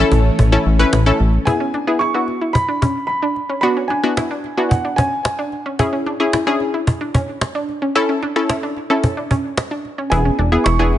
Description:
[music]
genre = synth-pop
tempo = 111 BPM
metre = 4/4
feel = straight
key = E mixolydian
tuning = A4 = 440 Hz
[part]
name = analog pluck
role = accompaniment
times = 0.0-11.0 s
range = B3 to B4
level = -19 LUFS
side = left 2 dB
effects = chorus
[part]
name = ensemble organ-string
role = sustained chords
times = 0.0-1.4 s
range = E3 to C#4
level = -23 LUFS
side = left 1 dB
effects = ensemble chorus
[part]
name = chorused synth bass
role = bass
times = 0.0-1.4, 10.1-11.0 s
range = E1 to A1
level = -15 LUFS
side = equal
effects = none
[part]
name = cajon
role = drums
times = 0.1-11.0 s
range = none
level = -19 LUFS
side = equal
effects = none
[part]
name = dark grand piano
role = melody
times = 1.5-5.5, 10.1-11.0 s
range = F#5 to C#6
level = -21 LUFS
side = right 2 dB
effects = digital delay
[part]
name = analog pluck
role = arpeggios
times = 1.5-11.0 s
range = C#4 to F#4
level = -22 LUFS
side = right 2 dB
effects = chorus, digital delay
[sound]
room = light reverb, small room reverb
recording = nothing above 10.8 kHz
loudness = -15 LUFS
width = side -12 dB against mid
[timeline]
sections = 0.0-1.5 A section; 1.5-11.0 B section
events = none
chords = 0.0 A; 1.5 E; 3.6 Bm; 5.8 C#m; 8.0 A; 10.1 E

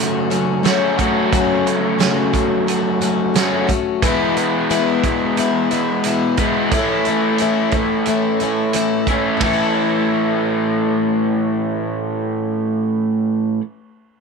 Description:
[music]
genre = folk rock and heartland rock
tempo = 89 BPM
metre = 4/4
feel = straight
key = A major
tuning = A4 = 440 Hz
[part]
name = picked plugged-in twelve-string acoustic guitar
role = accompaniment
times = 0.0-13.7 s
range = E2 to F#4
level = -20 LUFS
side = left 8 dB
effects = none
[part]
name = raw garage guitar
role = riff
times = 0.0-13.6 s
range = E2 to A4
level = -18 LUFS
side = right 2 dB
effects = overdrive
[part]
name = loose indie drum kit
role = drums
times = 0.3-9.6 s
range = hi-hat, kick drum, ride cymbal, snare drum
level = -22 LUFS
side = right 5 dB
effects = none
[sound]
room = moderate spring reverb, RT60 2.2 s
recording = 1960s-style stereo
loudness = -15 LUFS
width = side -4 dB against mid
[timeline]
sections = 0.0-9.4 A section; 9.4-12.1 B section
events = none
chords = 0.0 F#m; 4.0 E; 6.7 A

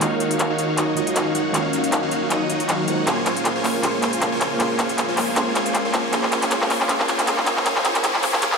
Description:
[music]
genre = future bass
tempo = 157 BPM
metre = 4/4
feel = swing 55% on 16ths, half-time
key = Bb minor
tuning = A4 = 439 Hz
[part]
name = felt-muted upright piano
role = accompaniment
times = 0.0-8.6 s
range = Bb2 to C6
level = -28 LUFS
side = right 4 dB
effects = tape echo
[part]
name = ethereal airy pad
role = sustained chords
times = 0.0-8.6 s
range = Db3 to F5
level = -30 LUFS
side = left 2 dB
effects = ensemble chorus, built-in reverb, phaser
[part]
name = concert harp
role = arpeggios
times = 0.0-8.6 s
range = Ab4 to Db6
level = -30 LUFS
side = right 3 dB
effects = low-pass filter, tape echo
[part]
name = supersaw chords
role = riff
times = 0.0-8.6 s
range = Eb3 to Ab5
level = -23 LUFS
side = left 1 dB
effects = low-pass filter, tape echo
[part]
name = saturated sub bass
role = bass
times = 0.0-8.6 s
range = none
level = barely audible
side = none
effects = none
[part]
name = big-room dance drum kit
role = drums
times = 0.0-8.6 s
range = handclaps, hi-hat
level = -22 LUFS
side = equal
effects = overdrive, studio reverb
[part]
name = riser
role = sound effects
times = 3.0-8.6 s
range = none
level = -33 LUFS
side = left 1 dB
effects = none
[sound]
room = moderate huge ambient reverb, RT60 4.9 s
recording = high-pass filter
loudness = -18 LUFS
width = side -5 dB against mid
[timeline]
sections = 0.0-8.6 A section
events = build-up 0.0-8.6; drum fill 0.0-8.6; filter sweep on supersaw synth 0.0-8.6; filter sweep on harp 0.0-8.6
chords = 0.0 Ebm9; 3.1 Bbm7; 6.1 Gbmaj7

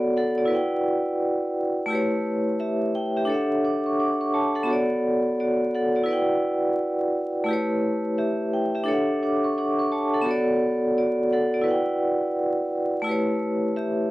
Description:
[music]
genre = hip hop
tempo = 86 BPM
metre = 4/4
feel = swing 62% on 16ths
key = E dorian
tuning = A4 = 440 Hz
[part]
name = vibraphone with hard mallets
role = solo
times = 0.0-14.1 s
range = A3 to D6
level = -22 LUFS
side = equal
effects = cassette tape, high-pass filter, low-pass filter
[sound]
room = light reverb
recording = home recording on cassette, vinyl crackle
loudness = -22 LUFS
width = side -18 dB against mid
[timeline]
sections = 0.0-11.7 A section; 11.7-14.1 B section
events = none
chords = 0.0 Bm7; 0.5 Em7; 1.9 A7; 3.3 Dmaj7; 4.7 Bm7; 6.1 Em7; 7.5 A7; 8.9 Dmaj7; 10.3 Bm7; 11.7 Em7; 13.1 A7

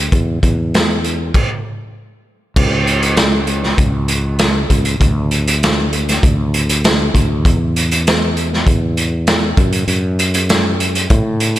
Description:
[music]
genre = indie rock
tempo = 98 BPM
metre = 4/4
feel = straight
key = unclear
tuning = A4 = 440 Hz
[part]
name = sustaining fretless electric bass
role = bass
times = 0.0-11.6 s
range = C#2 to A2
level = -17 LUFS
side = equal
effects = none
[part]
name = raw garage drum kit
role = drums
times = 0.1-11.6 s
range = crash cymbal, hi-hat, kick drum, snare drum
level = -14 LUFS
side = equal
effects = none
[sound]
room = light reverb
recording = none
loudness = -12 LUFS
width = side -14 dB against mid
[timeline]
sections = 0.0-2.6 A section; 2.6-11.6 B section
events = stop 1.3-2.6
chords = none

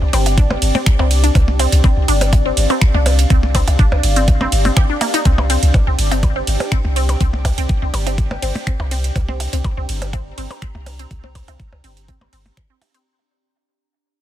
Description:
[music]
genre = minimal techno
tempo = 123 BPM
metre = 4/4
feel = straight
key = unclear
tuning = A4 = 441 Hz
[part]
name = punchy sub bass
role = bass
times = 0.0-12.7 s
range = G1 to C2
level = -17 LUFS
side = equal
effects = sidechain pumping
[part]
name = bubbling stepped-filter texture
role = texture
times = 0.0-13.1 s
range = D4 to D5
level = -30 LUFS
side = left 1 dB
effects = chorus, built-in reverb, sidechain pumping
[part]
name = warbly tape-like pad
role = texture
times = 0.0-13.1 s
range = C4 to Bb5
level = -26 LUFS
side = left 1 dB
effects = chorus, built-in reverb, sidechain pumping
[part]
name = resonant blip pluck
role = riff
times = 0.1-13.0 s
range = Bb3 to G4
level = -23 LUFS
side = left 1 dB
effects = phaser, sidechain pumping, digital delay
[part]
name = garage drum kit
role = drums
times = 0.1-13.0 s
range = finger snaps, hi-hat, ride cymbal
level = -24 LUFS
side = right 4 dB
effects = overdrive, soft clipping on snare
[part]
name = percussion blips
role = percussion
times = 0.1-12.9 s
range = none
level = -25 LUFS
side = equal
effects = dub echo
[part]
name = electronic kick drum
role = drums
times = 0.4-12.7 s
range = none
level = -15 LUFS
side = equal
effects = overdrive
[sound]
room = little or no reverb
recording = dense, heavily limited modern master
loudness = -13 LUFS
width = side -12 dB against mid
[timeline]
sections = 0.0-13.1 A section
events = drop 0.0-13.1; fade-out 5.3-13.1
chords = 0.0 C5

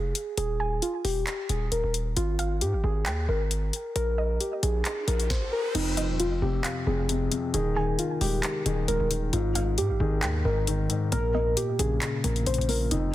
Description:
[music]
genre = hip hop, trap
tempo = 134 BPM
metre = 4/4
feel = half-time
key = unclear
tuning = A4 = 440 Hz
[part]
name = muted felt-like synth keys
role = melody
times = 0.0-13.1 s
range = Eb4 to C5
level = -30 LUFS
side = equal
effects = chorus
[part]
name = soft round pluck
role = second line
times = 0.0-11.6 s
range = Eb5 to Ab5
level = -38 LUFS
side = right 4 dB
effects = chorus, digital delay
[part]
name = hard-hitting 808-style bass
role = bass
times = 0.0-13.1 s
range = Eb1 to Ab2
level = -28 LUFS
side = equal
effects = none
[part]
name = trap drum kit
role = drums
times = 0.2-13.0 s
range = crash cymbal, handclaps, hi-hat, kick drum, snare drum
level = -32 LUFS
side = left 2 dB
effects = none
[part]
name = riser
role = sound effects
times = 4.6-5.7 s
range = none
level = -39 LUFS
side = equal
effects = none
[part]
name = felt-muted upright piano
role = accompaniment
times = 5.8-13.1 s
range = F2 to Ab3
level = -29 LUFS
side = left 3 dB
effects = none
[sound]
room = light reverb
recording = dense, heavily limited modern master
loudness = -24 LUFS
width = side -14 dB against mid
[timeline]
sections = 0.0-5.7 A section; 5.7-13.1 B section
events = riser 4.6-5.7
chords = 0.4 Ebsus4; 2.2 Ab5; 4.0 Bb7sus4; 5.7 Fm; 7.5 Ebsus4; 9.3 Ab5; 11.1 Bbm

